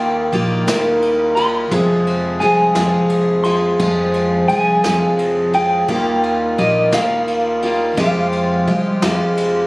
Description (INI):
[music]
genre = acoustic folk duo or small band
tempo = 58 BPM (dotted quarters)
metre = 6/8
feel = straight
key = F minor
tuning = A4 = 440 Hz
[part]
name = electric guitar through a small old amp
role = melody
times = 0.0-9.3 s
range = Eb5 to C6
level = -18 LUFS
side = equal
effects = tremolo
[part]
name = picked plugged-in steel-string acoustic guitar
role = accompaniment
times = 0.0-9.7 s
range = F2 to Ab4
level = -17 LUFS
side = equal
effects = none
[part]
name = hand-pumped harmonium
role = sustained chords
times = 0.0-9.7 s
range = F3 to Ab4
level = -25 LUFS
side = equal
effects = none
[part]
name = upright bass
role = bass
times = 0.0-9.7 s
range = Bb1 to F2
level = -21 LUFS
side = equal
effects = none
[part]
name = soft brush drum kit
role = drums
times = 0.3-9.5 s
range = kick drum, ride cymbal, snare drum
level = -26 LUFS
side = equal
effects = none
[sound]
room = wet studio reverb, RT60 0.5 s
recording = recorded on a phone in the room, studio reverb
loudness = -14 LUFS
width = side -22 dB against mid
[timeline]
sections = 0.0-9.7 A section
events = none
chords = 0.0 Ebadd9; 1.7 Fm; 5.9 Ebadd9; 8.0 Fmadd9